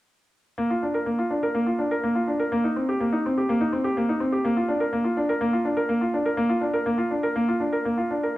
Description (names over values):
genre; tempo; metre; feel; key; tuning
classical-period piano sonatina; 123 BPM; 4/4; rubato; Bb major; A4 = 440 Hz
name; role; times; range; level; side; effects
bright grand piano; solo; 0.6-8.4 s; Bb3 to Bb4; -22 LUFS; equal; none
room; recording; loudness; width
moderate recital hall reverb, RT60 1.7 s; dark, warm production; -22 LUFS; side -16 dB against mid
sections
0.6-8.4 A section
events
none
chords
none